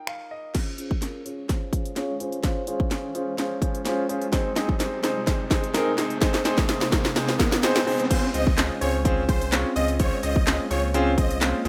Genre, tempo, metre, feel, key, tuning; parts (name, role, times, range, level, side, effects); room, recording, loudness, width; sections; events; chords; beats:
dance-pop; 127 BPM; 4/4; straight; A4 = 440 Hz
clear concert grand piano; accompaniment; 0.0-11.7 s; Bb3 to F5; -29 LUFS; equal; sidechain pumping, low-pass filter
house drum kit; drums; 0.1-11.7 s; crash cymbal, finger snaps, handclaps, hi-hat, kick drum, snare drum; -26 LUFS; equal
ethereal airy pad; sustained chords; 1.5-11.7 s; C3 to C5; -38 LUFS; equal; ensemble chorus, built-in reverb, phaser, sidechain pumping, low-pass filter
riser; sound effects; 2.7-8.1 s; -35 LUFS; equal
supersaw chords; melody; 8.1-11.4 s; C5 to Eb5; -33 LUFS; equal; sidechain pumping, digital delay
sub bass with octave; bass; 8.3-11.7 s; C2 to Db2; -30 LUFS; equal; sidechain pumping
light reverb; rough home demo mix; -24 LUFS; mono
0.5-8.1 A section; 8.1-11.7 B section
break 0.0-0.5; grand piano fill 0.0-0.5; build-up 0.5-8.1; drum fill 0.5-8.1; filter sweep 0.5-8.1; riser 2.7-8.1; drop 8.1-11.7
0.0 Ebsus2; 0.5 Dbmaj7; 4.3 Ab/C; 8.1 Dbmaj7
0.08 | 0.55 1.02 1.49 1.97 | 2.44 2.91 3.38 3.85 | 4.33 4.80 5.27 5.75 | 6.22 6.69 7.16 7.63 | 8.11 8.58 9.05 9.52 | 10.00 10.47 10.94 11.41